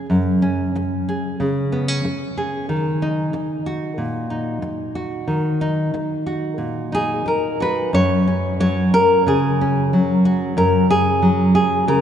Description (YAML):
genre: folk, solo fingerstyle acoustic guitar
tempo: 92 BPM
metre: 4/4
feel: rubato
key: F# major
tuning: A4 = 440 Hz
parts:
  - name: nylon-string guitar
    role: solo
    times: 0.0-12.0 s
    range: F#2 to C#5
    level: -17 LUFS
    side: equal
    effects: none
room: wet cathedral reverb, RT60 4.7 s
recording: recorded in a church or concert hall, nothing above 10.9 kHz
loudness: -17 LUFS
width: side -9 dB against mid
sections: 0.0-7.9 A section; 7.9-12.0 B section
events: none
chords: 0.0 F#sus2; 2.7 D#m; 7.9 F#sus2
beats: | 0.08 0.74 1.39 2.04 | 2.68 3.32 3.97 4.62 | 5.27 5.92 6.58 7.26 | 7.93 8.60 9.26 9.92 | 10.57 11.22 11.87